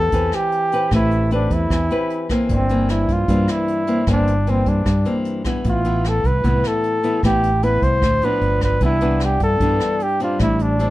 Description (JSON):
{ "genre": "bossa nova", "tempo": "152 BPM", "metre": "4/4", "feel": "straight", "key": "unclear", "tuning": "A4 = 440 Hz", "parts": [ { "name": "mellow flugelhorn", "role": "melody", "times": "0.0-10.9 s", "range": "C4 to C5", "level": "-20 LUFS", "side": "equal", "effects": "none" }, { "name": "nylon-string guitar", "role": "accompaniment", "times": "0.0-10.9 s", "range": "G2 to B4", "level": "-22 LUFS", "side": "left 1 dB", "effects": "none" }, { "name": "fingered electric bass", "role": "bass", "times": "0.0-10.9 s", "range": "G1 to G2", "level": "-20 LUFS", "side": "equal", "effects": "none" }, { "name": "jazz brush drum kit", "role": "drums", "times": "0.1-10.9 s", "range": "hi-hat, kick drum, rim click", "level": "-25 LUFS", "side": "equal", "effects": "none" } ], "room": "little or no reverb", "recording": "dark, warm production", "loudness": "-16 LUFS", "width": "side -16 dB against mid", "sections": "0.0-10.9 A section", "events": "none", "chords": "0.0 Am9; 2.5 C7/G; 5.7 Fmaj7#11/A (rootless); 8.4 G7; 8.8 Cmaj9; 10.4 Am7" }